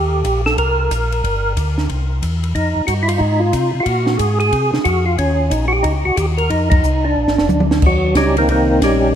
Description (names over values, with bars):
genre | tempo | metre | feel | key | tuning
soul jazz organ trio | 182 BPM | 4/4 | swing 64% on 8ths | Eb mixolydian | A4 = 440 Hz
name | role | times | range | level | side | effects
percussive tonewheel organ | melody | 0.0-9.1 s | Eb3 to Bb4 | -17 LUFS | equal | chorus vibrato, slow rotary speaker, analog delay
tonewheel organ | bass | 0.0-9.1 s | F1 to C3 | -18 LUFS | equal | overdrive, chorus vibrato, slow rotary speaker
compact cocktail drum kit | drums | 0.2-8.9 s | crash cymbal, hi-hat, kick drum, ride cymbal, snare drum, toms | -21 LUFS | right 1 dB | none
room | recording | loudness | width
moderate lush hall reverb, RT60 1.6 s, small room ambience | dreamy mix soaked in reverb | -14 LUFS | side -9 dB against mid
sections
0.0-7.8 A section; 7.8-9.2 B section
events
band accent 6.7; drum fill 7.2-7.8; tonewheel organ solo 7.8-9.2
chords
0.0 Eb6; 1.2 Gm; 1.9 C; 2.5 Fm7; 3.9 Bbsus2; 5.2 Eb5; 6.5 F5; 7.2 Bb7; 7.8 Eb6